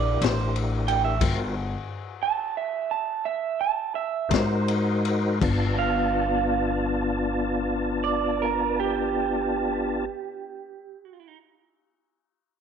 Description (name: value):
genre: slow blues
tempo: 53-61 BPM (dotted quarters)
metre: 12/8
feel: straight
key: G mixolydian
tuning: A4 = 440 Hz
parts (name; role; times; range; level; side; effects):
- electric guitar through a small old amp; second line; 0.0-11.4 s; G4 to A5; -27 LUFS; right 11 dB; spring reverb
- tonewheel organ; sustained chords; 0.0-10.1 s; B3 to A5; -27 LUFS; left 2 dB; slow rotary speaker, overdrive, chorus vibrato
- upright bass; bass; 0.0-10.1 s; G1 to Ab2; -28 LUFS; left 2 dB; none
- crunchy breakbeat drum kit; drums; 0.2-5.6 s; crash cymbal, kick drum, ride cymbal, snare drum; -30 LUFS; left 7 dB; none
room: light reverb, small room ambience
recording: 1960s-style stereo with parts hard left and right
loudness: -23 LUFS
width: side -7 dB against mid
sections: 0.0-5.4 A section; 5.4-9.9 B section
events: slowing down 0.0-5.4; clean electric guitar solo 0.0-5.4; stop 1.2-4.3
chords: 0.0 C9; 1.2 Gm13; 4.3 Ab9; 5.4 G9